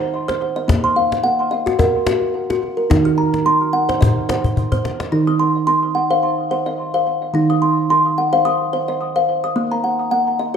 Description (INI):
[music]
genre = world meditative, meditative tuned percussion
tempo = 108 BPM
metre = 4/4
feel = swing 55% on 16ths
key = Eb kumoi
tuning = A4 = 440 Hz
[part]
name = kalimba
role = arpeggios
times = 0.0-10.6 s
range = Eb3 to F6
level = -16 LUFS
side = equal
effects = tape echo
[part]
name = cajon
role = percussion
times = 0.3-5.1 s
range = none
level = -19 LUFS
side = left 2 dB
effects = none
[sound]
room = wet echo chamber reverb, RT60 1.8 s, studio ambience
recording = dark, warm production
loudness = -15 LUFS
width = side -7 dB against mid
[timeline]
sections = 0.0-5.1 A section; 5.1-10.6 A section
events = drum fill 4.4-5.1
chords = 0.0 N.C.; 0.7 Bb5; 2.9 Ebm; 9.6 Ebm/Bb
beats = 0.14 | 0.69 1.24 1.80 2.35 | 2.90 3.46 4.01 4.57 | 5.12 5.68 6.23 6.79 | 7.34 7.90 8.45 9.01 | 9.56 10.12